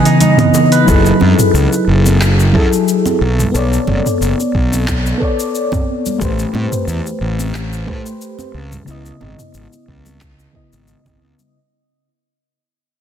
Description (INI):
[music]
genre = sunset chillout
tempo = 90 BPM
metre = 4/4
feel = swing 54% on 16ths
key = F# minor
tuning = A4 = 440 Hz
[part]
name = mellow FM electric piano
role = accompaniment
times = 0.0-11.6 s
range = C#3 to D#5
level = -15 LUFS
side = left 1 dB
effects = chorus, auto-pan, digital delay
[part]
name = soft string machine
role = sustained chords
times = 0.0-0.8 s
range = none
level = barely audible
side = none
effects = none
[part]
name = concert harp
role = arpeggios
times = 0.0-2.9 s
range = D#4 to B4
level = -19 LUFS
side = right 3 dB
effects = vintage 12-bit sampler grit, digital delay
[part]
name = deep house drum kit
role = drums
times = 0.1-11.5 s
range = cabasa, handclaps, hi-hat, toms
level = -22 LUFS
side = equal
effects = none
[part]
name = congas and bongos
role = percussion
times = 0.2-11.5 s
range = none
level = -24 LUFS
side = right 5 dB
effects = none
[part]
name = fuzz fingered electric bass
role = bass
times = 0.9-11.3 s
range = F#1 to A2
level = -16 LUFS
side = equal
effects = overdrive
[part]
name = electronic kick drum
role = drums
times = 0.9-11.2 s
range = none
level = -18 LUFS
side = equal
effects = none
[sound]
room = moderate lush hall reverb, RT60 1.8 s, digital ambience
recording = dense, heavily limited modern master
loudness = -11 LUFS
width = side -9 dB against mid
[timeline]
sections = 0.9-11.5 A section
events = fade-out 0.9-11.5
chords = 0.0 C#m9; 0.9 F#m9; 3.2 Bm9; 6.2 Am9; 8.5 C#m9